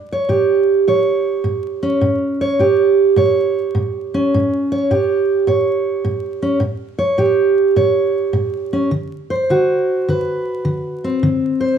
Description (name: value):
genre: blues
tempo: 104 BPM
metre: 4/4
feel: swing 66% on 8ths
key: A mixolydian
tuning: A4 = 441 Hz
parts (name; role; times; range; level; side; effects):
- fingerpicked steel-string acoustic guitar; solo; 0.0-11.8 s; A2 to C#5; -14 LUFS; right 2 dB; none
room: light reverb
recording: band playing live in one room, vinyl crackle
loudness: -14 LUFS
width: side -8 dB against mid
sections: 0.0-11.8 A section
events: none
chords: 0.0 A7; 8.9 D7